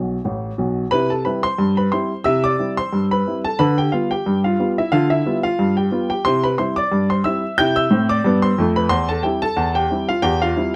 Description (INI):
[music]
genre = ragtime piano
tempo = 90 BPM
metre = 2/4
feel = swing 56% on 16ths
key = C major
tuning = A4 = 440 Hz
[part]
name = warm baby grand piano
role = solo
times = 0.0-10.8 s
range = A1 to G6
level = -19 LUFS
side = equal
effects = none
[sound]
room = moderate small room reverb, RT60 0.6 s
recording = none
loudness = -19 LUFS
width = mono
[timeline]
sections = 0.9-10.8 A section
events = grand piano fill 0.0-0.9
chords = 0.0 C (rootless); 0.9 C; 3.6 G7; 6.2 C; 8.9 C/E